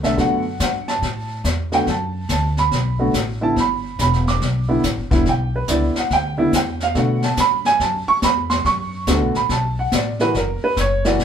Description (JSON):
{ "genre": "jazz piano trio", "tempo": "142 BPM", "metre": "4/4", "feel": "swing 65% on 8ths", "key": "B minor", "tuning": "A4 = 441 Hz", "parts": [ { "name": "warm upright piano", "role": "melody", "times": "0.0-11.2 s", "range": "D3 to D6", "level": "-19 LUFS", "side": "right 2 dB", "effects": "none" }, { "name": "upright bass", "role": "bass", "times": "0.0-11.2 s", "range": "E1 to B2", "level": "-23 LUFS", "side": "equal", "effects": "none" }, { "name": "jazz brush drum kit", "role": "drums", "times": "0.0-11.2 s", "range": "brushed snare drum, hi-hat, kick drum, snare drum", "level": "-24 LUFS", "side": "left 2 dB", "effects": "none" } ], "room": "moderate small room reverb, RT60 0.5 s", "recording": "band playing live in one room", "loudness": "-17 LUFS", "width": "side -8 dB against mid", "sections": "0.0-11.2 A section", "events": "upright piano solo 0.0-11.2", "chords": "0.0 Bm7; 3.6 Em7; 7.0 Bm7; 10.3 F#" }